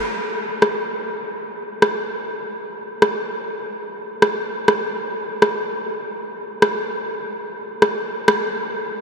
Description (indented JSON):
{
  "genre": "dancehall",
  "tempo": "100 BPM",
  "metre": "4/4",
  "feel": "straight",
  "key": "none",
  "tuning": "none",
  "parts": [
    { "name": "electronic rim click", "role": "drums", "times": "0.6-8.4 s", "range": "none", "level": "-20 LUFS", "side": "equal", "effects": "none" }
  ],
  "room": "wet cathedral reverb, RT60 6.8 s",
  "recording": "dreamy mix soaked in reverb",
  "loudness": "-19 LUFS",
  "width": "side -6 dB against mid",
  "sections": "0.0-9.0 A section",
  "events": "break 8.4-9.0",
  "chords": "none"
}